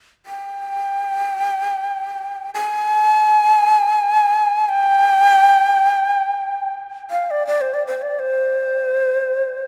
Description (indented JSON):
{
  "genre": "japanese traditional, Japanese chamber music",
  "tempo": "free time",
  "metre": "none",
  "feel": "none",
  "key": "G in sen",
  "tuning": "A4 = 440 Hz",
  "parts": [
    { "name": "breathy long shakuhachi", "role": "solo", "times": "0.3-9.7 s", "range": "C5 to Ab5", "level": "-18 LUFS", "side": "equal", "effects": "none" }
  ],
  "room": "moderate cathedral reverb, RT60 6.3 s",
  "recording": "none",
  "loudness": "-18 LUFS",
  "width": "mono",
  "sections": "0.0-9.7 A section",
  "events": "none",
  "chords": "none"
}